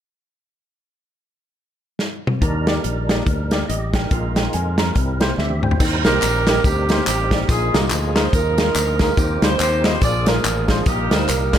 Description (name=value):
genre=uptempo gospel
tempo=142 BPM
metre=4/4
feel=swing 59% on 8ths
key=Eb major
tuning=A4 = 440 Hz
part: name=natural country drum kit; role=drums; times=2.0-11.6 s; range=crash cymbal, hi-hat, kick drum, snare drum, toms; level=-20 LUFS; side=equal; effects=none
part: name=dark baby grand piano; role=accompaniment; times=2.4-11.6 s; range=Bb2 to Bb5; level=-25 LUFS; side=left 2 dB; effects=none
part: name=percussive tonewheel organ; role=sustained chords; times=2.4-11.6 s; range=F3 to E5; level=-27 LUFS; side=right 3 dB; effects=slow rotary speaker, overdrive, chorus vibrato
part: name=modern bright fingered electric bass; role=bass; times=2.4-11.6 s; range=A1 to F2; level=-23 LUFS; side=left 1 dB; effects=none
part: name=tambourine and handclaps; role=percussion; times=5.8-11.6 s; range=none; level=-28 LUFS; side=left 3 dB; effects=none
part: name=mellow saxophone section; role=melody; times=6.1-11.6 s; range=Bb3 to D5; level=-21 LUFS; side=right 2 dB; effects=none
room=light reverb, small room ambience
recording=none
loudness=-16 LUFS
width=side -10 dB against mid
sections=0.7-2.4 A section; 2.4-5.8 B section; 5.8-11.6 C section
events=drum fill 2.0-2.4, 5.4-5.8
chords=0.7 N.C.; 2.4 Ebmaj7; 4.1 Bb7sus4; 5.0 C7; 5.8 Eb6; 7.5 Bb7sus4; 9.2 Eb69; 10.0 Bb7; 10.9 Eb/Bb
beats=| 0.72 1.15 1.57 2.00 | 2.42 2.84 3.27 3.69 | 4.11 4.53 4.96 5.38 | 5.80 6.22 6.64 7.07 | 7.49 7.91 8.33 8.75 | 9.18 9.60 10.02 10.44 | 10.86 11.28